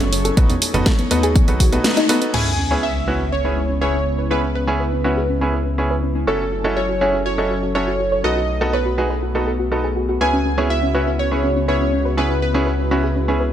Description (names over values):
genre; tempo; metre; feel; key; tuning
progressive house; 122 BPM; 4/4; straight; C# minor; A4 = 442 Hz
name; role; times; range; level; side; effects
airy breathy pad; sustained chords; 0.0-13.5 s; C#3 to G#5; -26 LUFS; left 1 dB; chorus, sidechain pumping
soft round pluck; arpeggios; 0.0-13.5 s; B3 to D#5; -24 LUFS; left 1 dB; analog chorus, vintage 12-bit sampler grit, sidechain pumping, tape echo
bright grand piano; stabs; 0.0-13.4 s; B3 to B4; -23 LUFS; right 1 dB; sidechain pumping, low-pass filter, tape echo
dark detuned saw bass; bass; 0.0-13.5 s; F#1 to D#2; -23 LUFS; equal; tube saturation, sidechain pumping
house drum kit; drums; 0.0-2.4 s; crash cymbal, hi-hat, snare drum; -22 LUFS; equal; sidechain pumping on hats, sidechain pumping on cymbals
bongos and congas; percussion; 0.0-2.1 s; none; -28 LUFS; right 2 dB; sidechain pumping on perc
drifting glass-harmonics texture; texture; 0.0-2.4 s; C#5 to C#6; -34 LUFS; left 2 dB; chorus, built-in reverb, sidechain pumping
electronic kick drum; drums; 0.4-1.7 s; none; -15 LUFS; equal; none
plucky unison lead; melody; 2.3-13.5 s; A4 to G#5; -23 LUFS; equal; wide subtle chorus, sidechain pumping, tape echo
sub drop; sound effects; 2.3-4.3 s; none; -27 LUFS; equal; none
room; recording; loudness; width
light reverb; none; -16 LUFS; side -10 dB against mid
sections
0.0-2.3 A section; 2.3-13.5 B section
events
filter sweep on synth pluck 0.0-2.3; band accent 1.8; impact 2.3-4.3; filter sweep on analog synth pad 2.3-13.5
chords
0.4 B7; 2.3 C#m7; 6.3 F#m7; 8.2 B7; 10.2 C#m7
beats
| 0.37 0.86 1.36 1.85 | 2.34 2.83 3.32 3.81 | 4.31 4.80 5.29 5.78 | 6.27 6.77 7.26 7.75 | 8.24 8.73 9.22 9.72 | 10.21 10.70 11.19 11.68 | 12.18 12.67 13.16